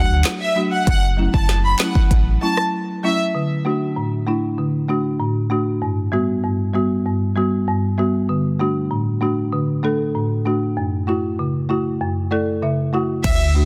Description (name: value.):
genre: dancehall.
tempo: 97 BPM.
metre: 4/4.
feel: straight.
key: D major.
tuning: A4 = 440 Hz.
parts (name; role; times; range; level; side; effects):
rich studio violin section; melody; 0.0-3.2, 13.2-13.4 s; E5 to B5; -25 LUFS; equal; tape echo.
folk marimba with medium hard mallets; accompaniment; 0.0-13.7 s; F#2 to F#5; -22 LUFS; equal; none.
sub bass with octave; bass; 0.0-2.4, 13.2-13.7 s; F#1 to D2; -20 LUFS; equal; none.
afro-pop drum kit; drums; 0.2-2.7, 13.2-13.4 s; crash cymbal, handclaps, hi-hat, kick drum, rim click, snare drum; -21 LUFS; equal; none.
room: light reverb, digital ambience.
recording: dense, heavily limited modern master.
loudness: -20 LUFS.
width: mono.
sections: 0.0-3.3 A section; 3.3-13.2 B section.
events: break 2.7-3.3; marimba fill 12.0-13.2.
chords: 0.0 D; 0.9 F#m7; 2.1 A6; 3.3 D; 5.8 Gmaj7; 8.3 D; 10.8 F#m7.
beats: 0.25 | 0.87 1.49 2.11 2.73 | 3.35 3.96 4.58 5.20 | 5.82 6.44 7.06 7.67 | 8.29 8.91 9.53 10.15 | 10.77 11.39 12.01 12.62 | 13.24.